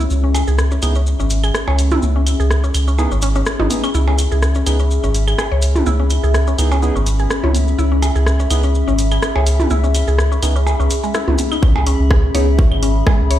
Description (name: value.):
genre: minimal techno.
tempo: 125 BPM.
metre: 4/4.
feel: swing 54% on 16ths.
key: C# minor.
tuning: A4 = 438 Hz.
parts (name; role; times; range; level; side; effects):
mallet-like synth pluck; riff; 0.0-13.4 s; G#3 to C#5; -25 LUFS; left 1 dB; chorus, phaser, sidechain pumping, tape echo.
round analog bass; bass; 0.0-13.4 s; G#1 to C#2; -15 LUFS; equal; sidechain pumping.
maracas; percussion; 0.0-11.6 s; none; -30 LUFS; left 2 dB; none.
warbly tape-like pad; texture; 0.0-13.4 s; C#4 to B5; -22 LUFS; left 2 dB; chorus, built-in reverb, phaser, sidechain pumping.
punchy analog drum machine; drums; 0.3-13.4 s; hi-hat, rim click; -23 LUFS; equal; low-pass filter on hats, low-pass filter on snare.
electronic claves, percussion blips and toms; percussion; 0.3-13.2 s; none; -23 LUFS; right 2 dB; tape echo.
percussive organ stab; stabs; 0.8-12.5 s; B3 to G#4; -27 LUFS; right 3 dB; wide subtle chorus, vintage 12-bit sampler grit, tape echo.
electronic kick drum; drums; 11.6-13.2 s; none; -13 LUFS; equal; none.
room: light reverb.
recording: played on a big sound system in a bare room, stone room reverb.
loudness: -13 LUFS.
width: side -12 dB against mid.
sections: 0.0-11.6 A section; 11.6-13.4 B section.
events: drop 11.6-13.4.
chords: 0.0 C#m7.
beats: | 0.11 0.59 1.07 1.55 | 2.03 2.51 2.99 3.47 | 3.95 4.43 4.91 5.39 | 5.87 6.35 6.83 7.31 | 7.79 8.27 8.75 9.23 | 9.71 10.19 10.67 11.15 | 11.63 12.11 12.59 13.07.